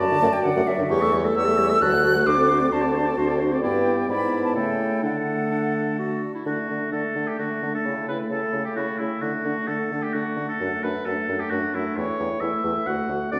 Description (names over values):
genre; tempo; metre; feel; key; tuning
quick classical-period movement for wind quintet; 131 BPM; 3/4; rubato; D major; A4 = 441 Hz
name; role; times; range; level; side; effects
concert flute; melody; 0.0-13.4 s; D5 to F#6; -29 LUFS; equal; none
warm oboe; second line; 0.0-13.4 s; E4 to A5; -31 LUFS; equal; none
bright clarinet; accompaniment; 0.0-13.4 s; D4 to A4; -32 LUFS; equal; none
warm French horn; accompaniment; 0.0-13.4 s; D3 to D4; -30 LUFS; equal; none
warm bassoon; bass; 0.0-13.4 s; D2 to D3; -30 LUFS; equal; none
room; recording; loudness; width
wet recital hall reverb, RT60 1.5 s; heard from further back in the room; -23 LUFS; mono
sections
0.0-6.5 A section; 6.5-13.4 B section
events
none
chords
0.0 D/F#; 0.9 A7/E; 1.8 D; 2.3 D7; 3.6 G6; 4.1 E7/G#; 4.6 A7/C#; 5.0 D; 7.9 A7/C#; 9.2 D; 10.6 D/F#; 12.0 A7/E; 12.9 D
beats
0.00 0.45 | 0.90 1.35 1.81 | 2.26 2.72 3.17 | 3.63 4.09 4.55 | 5.03 5.51 5.99 | 6.46 6.93 7.39 | 7.85 8.31 8.77 | 9.23 9.68 10.14 | 10.60 11.05 11.51 | 11.96 12.41 12.87 | 13.33